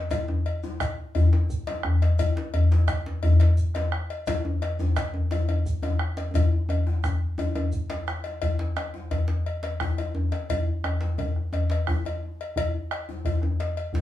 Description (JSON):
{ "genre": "west african traditional, West African drum ensemble", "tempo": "116 BPM (dotted quarters)", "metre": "12/8", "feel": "straight", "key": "none", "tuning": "none", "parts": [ { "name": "bombo", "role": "percussion", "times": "0.1-14.0 s", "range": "none", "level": "-30 LUFS", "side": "right 1 dB", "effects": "none" }, { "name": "cowbell", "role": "percussion", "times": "0.1-13.9 s", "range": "none", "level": "-33 LUFS", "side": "left 4 dB", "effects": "none" }, { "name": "djembe", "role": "percussion", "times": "0.1-14.0 s", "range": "none", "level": "-30 LUFS", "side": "left 4 dB", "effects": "none" }, { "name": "djembe", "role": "percussion", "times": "0.1-14.0 s", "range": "none", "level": "-24 LUFS", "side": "left 1 dB", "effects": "none" }, { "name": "shekere", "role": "percussion", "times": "0.1-8.2 s", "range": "none", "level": "-34 LUFS", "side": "equal", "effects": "none" } ], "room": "wet studio reverb, RT60 0.5 s", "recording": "band playing live in one room, small room reverb", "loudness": "-23 LUFS", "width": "side -13 dB against mid", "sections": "0.0-8.4 A section; 8.4-14.0 A section", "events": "drum fill 6.3-8.4", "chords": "none" }